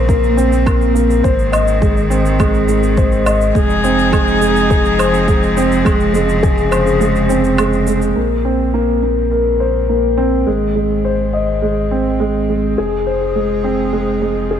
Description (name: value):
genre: piano and strings electronica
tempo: 104 BPM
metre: 4/4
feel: straight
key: Bb minor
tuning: A4 = 440 Hz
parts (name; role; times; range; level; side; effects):
- warm string quartet; sustained chords; 0.0-14.6 s; Db3 to Ab4; -21 LUFS; equal; sidechain pumping
- dark grand piano; riff; 0.0-14.6 s; Ab3 to Eb5; -15 LUFS; equal; digital delay
- warm sub bass; bass; 0.0-14.6 s; F1 to Bb1; -19 LUFS; equal; sidechain pumping
- electronic kick drum; drums; 0.1-6.5 s; none; -16 LUFS; equal; none
- shaker and woodblock; drums; 0.1-8.1 s; none; -26 LUFS; right 3 dB; none
room: light reverb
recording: none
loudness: -12 LUFS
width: side -9 dB against mid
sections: 0.0-8.2 A section; 8.2-14.6 B section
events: kick drops out 7.0-8.2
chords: 0.0 Bbmadd9; 1.2 Ab; 3.5 Fm7; 5.9 Dbmaj7/F; 8.2 Bbmadd9; 10.5 Ab; 12.8 Fm7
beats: 0.09 0.66 | 1.24 1.82 2.39 2.97 | 3.55 4.12 4.70 5.28 | 5.86 6.43 7.01 7.59 | 8.16 8.74 9.32 9.89 | 10.47 11.05 11.62 12.20 | 12.78 13.36 13.93 14.51